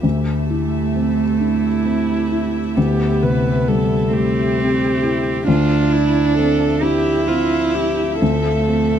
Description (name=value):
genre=neoclassical piano and strings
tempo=44 BPM (dotted quarters)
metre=6/8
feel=rubato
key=unclear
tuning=A4 = 439 Hz
part: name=dark cello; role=second line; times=0.0-9.0 s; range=A3 to E4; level=-20 LUFS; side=right 5 dB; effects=none
part: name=felt-muted upright piano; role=accompaniment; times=0.0-9.0 s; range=D2 to E4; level=-18 LUFS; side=left 2 dB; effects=none
part: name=dark chamber string section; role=sustained chords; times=0.0-9.0 s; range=F3 to E5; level=-29 LUFS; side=left 4 dB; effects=none
part: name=dark viola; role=accompaniment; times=1.4-9.0 s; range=E4 to B4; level=-22 LUFS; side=right 1 dB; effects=none
room=light reverb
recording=dark, warm production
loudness=-15 LUFS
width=side -9 dB against mid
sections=0.0-9.0 A section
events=none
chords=0.0 Cmaj7/D; 5.5 Fmaj7/D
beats=| 0.04 1.40 | 2.77 4.12 | 5.47 6.82 | 8.21